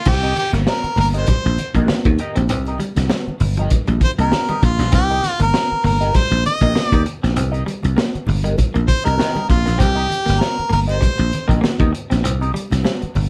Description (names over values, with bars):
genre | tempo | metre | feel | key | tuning
funk | 99 BPM | 4/4 | swing 56% on 16ths | C minor | A4 = 439 Hz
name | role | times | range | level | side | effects
clear harmonica | melody | 0.0-11.5 s | F4 to Eb5 | -22 LUFS | equal | none
semi-hollow electric guitar | accompaniment | 0.1-13.0 s | G4 to Eb5 | -30 LUFS | equal | wah, phaser
clean electric guitar | riff | 0.1-13.2 s | F3 to C4 | -29 LUFS | equal | none
dry thumbed slap bass | bass | 0.1-13.3 s | G1 to Eb2 | -20 LUFS | equal | none
crunchy breakbeat drum kit | drums | 0.1-13.3 s | crash cymbal, hi-hat, kick drum, snare drum | -22 LUFS | equal | none
congas | percussion | 0.1-13.3 s | none | -31 LUFS | equal | none
room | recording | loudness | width
moderate small room reverb, RT60 0.6 s | lossy compression artefacts | -18 LUFS | mono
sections
0.1-13.3 A section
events
none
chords
0.1 Cm7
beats
| 0.07 0.68 1.29 1.89 | 2.50 3.11 3.72 4.33 | 4.94 5.54 6.15 6.76 | 7.37 7.97 8.58 9.19 | 9.80 10.41 11.02 11.63 | 12.24 12.85